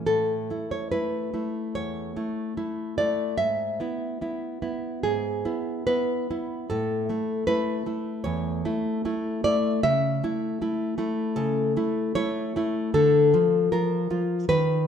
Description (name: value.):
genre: romantic piece for solo classical guitar.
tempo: 67-80 BPM.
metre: 4/4.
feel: rubato.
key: A major.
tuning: A4 = 440 Hz.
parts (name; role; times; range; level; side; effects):
nylon-string guitar; solo; 0.0-14.9 s; E2 to E5; -23 LUFS; left 1 dB; none.
room: moderate scoring stage reverb, RT60 1.8 s.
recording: minimal, uncompressed stereo recording.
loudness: -24 LUFS.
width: side -8 dB against mid.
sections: 0.1-14.9 A section.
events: none.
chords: 0.1 A; 3.4 E/G#; 6.7 A; 9.8 A/C#; 13.0 Bb/D.